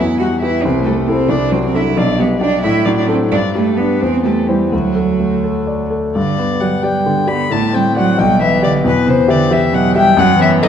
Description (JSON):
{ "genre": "quick classical-period movement for piano trio", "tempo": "89 BPM (dotted quarters)", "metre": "6/8", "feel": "rubato", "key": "G major", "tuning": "A4 = 440 Hz", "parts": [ { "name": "warm violin", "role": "melody", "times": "0.0-10.7 s", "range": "F#4 to B5", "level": "-19 LUFS", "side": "left 6 dB", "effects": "none" }, { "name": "warm cello", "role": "second line", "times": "0.0-10.7 s", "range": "B2 to F#4", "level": "-17 LUFS", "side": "right 6 dB", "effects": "none" }, { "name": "clear concert grand piano", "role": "accompaniment", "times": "0.0-10.7 s", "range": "B1 to E5", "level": "-15 LUFS", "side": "left 2 dB", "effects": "none" } ], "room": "wet concert hall reverb, RT60 2.1 s", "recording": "dark, warm production", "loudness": "-12 LUFS", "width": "side -8 dB against mid", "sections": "0.0-6.2 A section; 6.2-10.7 B section", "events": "none", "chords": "0.0 Em; 0.6 Am7/C; 1.3 D7/C; 2.0 G/B; 2.6 D/A; 3.3 G; 4.0 C/E; 4.7 D; 6.2 G; 7.5 D7/A; 8.2 G/B; 8.9 Em" }